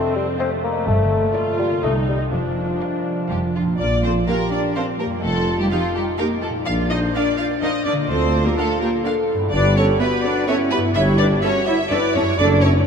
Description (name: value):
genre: cinematic, playful, whimsical film cue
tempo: 126 BPM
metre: 3/4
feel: straight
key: Bb major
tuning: A4 = 439 Hz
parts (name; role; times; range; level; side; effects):
- rich chamber violin section; melody; 0.0-12.0 s; D5 to F5; -36 LUFS; right 3 dB; none
- rich studio violin section; second line; 0.0-12.7 s; F4 to F5; -24 LUFS; equal; none
- mellow bassoon; accompaniment; 0.0-3.5 s; F3 to C4; -24 LUFS; left 4 dB; none
- rich symphonic viola section; accompaniment; 0.0-12.0 s; A3 to B4; -30 LUFS; right 2 dB; none
- concert harp; arpeggios; 0.0-12.9 s; F2 to F5; -26 LUFS; equal; none
- dark chamber cello section; bass; 0.9-12.9 s; C2 to F4; -25 LUFS; right 1 dB; none
- rich studio double bass section; bass; 0.9-12.8 s; F1 to D2; -24 LUFS; equal; none
- small flute group; second line; 3.3-12.7 s; C4 to D5; -26 LUFS; equal; none
- dark French horn section; sustained chords; 3.8-12.9 s; D4 to A4; -24 LUFS; left 1 dB; stereo widening
- mellow tuba; bass; 3.8-12.8 s; F1 to D2; -23 LUFS; right 1 dB; none
room: wet cathedral reverb, RT60 6.0 s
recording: in a vast, echoing space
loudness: -17 LUFS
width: side -6 dB against mid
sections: 0.0-3.8 A section; 3.8-12.9 B section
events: none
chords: 0.0 F7; 0.9 Gm7; 1.8 Cm; 2.3 Bb/F; 3.3 F; 3.8 Bb; 5.2 F9; 6.7 Bb; 8.1 Bb/D; 9.5 Em7/G; 11.0 A7/G